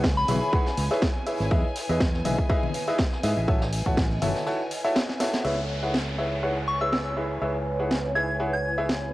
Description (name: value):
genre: piano house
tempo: 122 BPM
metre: 4/4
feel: swing 55% on 16ths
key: C# minor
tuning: A4 = 443 Hz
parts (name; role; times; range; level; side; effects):
- rich chamber violin section; sustained chords; 0.0-9.1 s; G#5; -38 LUFS; equal; sidechain pumping, low-pass filter, cassette tape
- bright upright piano; riff; 0.0-8.9 s; E4 to F#5; -28 LUFS; equal; sidechain pumping, cassette tape, analog delay
- fingered electric bass; bass; 0.0-9.1 s; F#1 to G#2; -29 LUFS; equal; sidechain pumping, low-pass filter
- electronic kick drum; drums; 0.0-4.1 s; none; -24 LUFS; equal; overdrive, cassette tape
- house drum kit; drums; 0.0-9.0 s; crash cymbal, hi-hat, snare drum; -30 LUFS; equal; overdrive, cassette tape
- vintage brush drum kit; drums; 0.0-5.4 s; hi-hat, ride cymbal, snare drum; -40 LUFS; equal; sidechain pumping on hats, high-pass filter on hats, cassette tape, sidechain pumping on cymbals, high-pass filter on cymbals, high-pass filter on snare, high-pass filter on room
- tambourine and congas; percussion; 0.0-5.4 s; none; -36 LUFS; left 6 dB; none
- granular cloud pad; texture; 0.0-9.1 s; E4 to G#5; -35 LUFS; right 1 dB; built-in reverb, sidechain pumping, cassette tape
- soft synth bell; melody; 0.2-0.9, 6.7-9.0 s; B5 to G#6; -28 LUFS; left 1 dB; chorus, cassette tape
- downlifter; sound effects; 5.4-9.1 s; none; -37 LUFS; equal; none
room: moderate spring reverb, RT60 1.4 s, small room reverb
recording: home recording on cassette, faint mains hum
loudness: -23 LUFS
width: side -17 dB against mid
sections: 0.0-5.4 A section; 5.4-9.1 B section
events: drum fill 5.1-5.4; band accent 5.3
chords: 0.0 C#m7; 1.5 Emaj7; 3.5 A6; 5.4 C#m7